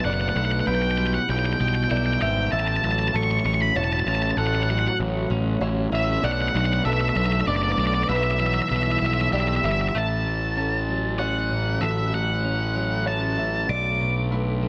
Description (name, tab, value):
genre	rock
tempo	97 BPM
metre	3/4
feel	straight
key	unclear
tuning	A4 = 439 Hz
part	octave-fuzz lead guitar	melody	0.0-14.7 s	D5 to D6	-28 LUFS	equal	distortion, analog delay
part	dark analog pad	sustained chords	0.0-14.7 s	G3 to C#5	-37 LUFS	equal	none
part	clean electric guitar	arpeggios	0.0-14.7 s	A2 to G4	-33 LUFS	equal	analog delay
part	felt-muted upright piano	arpeggios	0.0-14.7 s	A4 to E5	-35 LUFS	equal	analog delay
part	fuzz picked electric bass	bass	0.0-14.7 s	E1 to B1	-27 LUFS	equal	overdrive
room	light reverb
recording	none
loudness	-23 LUFS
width	mono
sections	0.0-9.9 A section; 9.9-14.7 B section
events	none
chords	0.0 Bm7; 0.7 Em/B; 2.5 A6; 6.2 Bm7; 8.1 Em/B; 9.9 A6; 13.7 Bm7